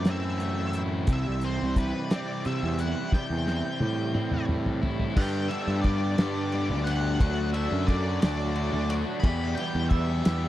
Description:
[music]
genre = indie rock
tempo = 59 BPM (dotted quarters)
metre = 6/8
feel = straight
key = G major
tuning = A4 = 440 Hz
[part]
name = octave-fuzz lead guitar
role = melody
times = 0.0-10.5 s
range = B4 to B5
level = -35 LUFS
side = left 2 dB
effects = distortion, slapback echo
[part]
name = fuzz guitar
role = riff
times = 0.0-10.5 s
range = G2 to E4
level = -34 LUFS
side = right 6 dB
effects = distortion, ensemble chorus, slapback echo
[part]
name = overdriven electric guitar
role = riff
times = 0.0-10.5 s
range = E2 to G4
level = -34 LUFS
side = left 5 dB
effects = spring reverb
[part]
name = fuzz picked electric bass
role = bass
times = 0.0-10.5 s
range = C2 to C3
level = -28 LUFS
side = equal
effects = overdrive
[part]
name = cloth-damped thuddy drum kit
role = drums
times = 0.0-10.4 s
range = crash cymbal, hi-hat, kick drum, ride cymbal, snare drum, toms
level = -25 LUFS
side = equal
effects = none
[part]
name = soft synth bell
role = second line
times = 5.2-10.5 s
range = D6 to B6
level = -45 LUFS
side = right 3 dB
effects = none
[part]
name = string machine, violas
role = sustained chords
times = 5.2-10.5 s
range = F#4 to B5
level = -42 LUFS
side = left 1 dB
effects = none
[sound]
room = little or no reverb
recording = dry, close 1970s-style studio recording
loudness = -24 LUFS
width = side -14 dB against mid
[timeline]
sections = 0.0-5.2 A section; 5.2-10.5 B section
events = drum fill 3.1-5.2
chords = 0.0 Am; 1.1 C; 5.2 Gadd9; 7.2 D; 9.2 Em

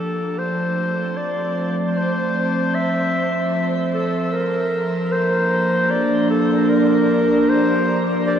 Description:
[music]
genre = ambient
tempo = 76 BPM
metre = 3/4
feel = straight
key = G dorian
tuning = A4 = 440 Hz
[part]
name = warm clarinet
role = melody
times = 0.0-8.4 s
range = A4 to E5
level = -20 LUFS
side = equal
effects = tape echo
[part]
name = warbly tape-like pad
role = sustained chords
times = 0.0-8.4 s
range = F3 to A5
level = -20 LUFS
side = equal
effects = chorus, built-in reverb
[sound]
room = wet shimmer reverb, RT60 7.6 s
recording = worn, warbling old tape, cassette tape, warbly pitch drift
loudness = -17 LUFS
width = side -8 dB against mid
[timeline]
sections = 0.0-8.4 A section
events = fade-in on clarinet 0.0-8.4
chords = 0.0 F; 4.3 Gm7

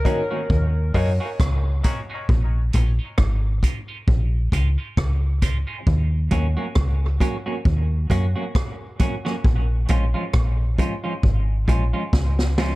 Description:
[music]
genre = dub reggae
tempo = 67 BPM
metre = 4/4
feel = swing 57% on 16ths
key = Eb minor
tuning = A4 = 439 Hz
[part]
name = clear upright piano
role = stabs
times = 0.0-2.9 s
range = Eb4 to Db5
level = -30 LUFS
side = left 3 dB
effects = high-pass filter, dub echo
[part]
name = clean electric guitar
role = accompaniment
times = 0.1-12.7 s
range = Eb3 to Gb4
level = -28 LUFS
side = right 2 dB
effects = high-pass filter, dub echo
[part]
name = vintage drum kit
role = drums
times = 0.1-12.8 s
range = hi-hat, kick drum, rim click, snare drum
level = -22 LUFS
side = equal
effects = none
[part]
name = deep dub fingered electric bass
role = bass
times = 0.5-12.8 s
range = Ab1 to Gb2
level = -20 LUFS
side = equal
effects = none
[sound]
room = light reverb, small room reverb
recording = echo-heavy mix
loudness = -19 LUFS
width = side -19 dB against mid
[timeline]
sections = 0.0-12.8 A section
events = filter sweep 0.0-5.9; drum fill 12.1-12.8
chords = 0.0 Ebm7; 2.3 Bbm7; 5.9 Ebm7; 9.4 Bbm7

